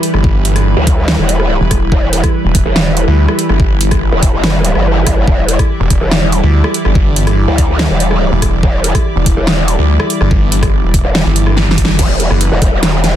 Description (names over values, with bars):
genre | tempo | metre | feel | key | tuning
heavy wobble dubstep | 143 BPM | 4/4 | half-time | E minor | A4 = 439 Hz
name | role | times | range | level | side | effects
lush unison pad | sustained chords | 0.0-13.2 s | E3 to D5 | -18 LUFS | equal | chorus, vintage 12-bit sampler grit, sidechain pumping
dubstep drum kit | drums | 0.0-13.1 s | crash cymbal, hi-hat, rim click, snare drum | -16 LUFS | equal | overdrive
snarling distorted saw bass | bass | 0.1-12.5 s | E1 to D2 | -12 LUFS | equal | distortion, overdrive
electronic kick drum | drums | 0.2-12.7 s | none | -13 LUFS | equal | overdrive
growl bass | bass | 0.8-13.2 s | E1 to D2 | -13 LUFS | equal | chorus, overdrive
room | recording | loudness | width
light reverb | dense, heavily limited modern master | -9 LUFS | side -11 dB against mid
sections
0.0-12.0 A section; 12.0-13.2 A section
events
drop 0.0-12.0, 12.0-13.2; drum fill 11.6-12.0; band accent 11.8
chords
0.0 Em; 12.0 Emadd9